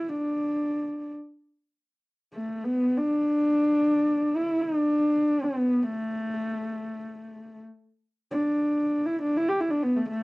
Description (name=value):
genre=mongolian traditional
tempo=free time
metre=none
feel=none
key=D zhi mode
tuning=A4 = 442 Hz
part: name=dark horsehead fiddle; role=solo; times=0.0-10.2 s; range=A3 to G4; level=-24 LUFS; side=equal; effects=cassette tape
room=wet studio reverb, RT60 0.6 s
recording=home recording on cassette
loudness=-23 LUFS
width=side -25 dB against mid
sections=0.0-10.2 A section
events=none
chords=none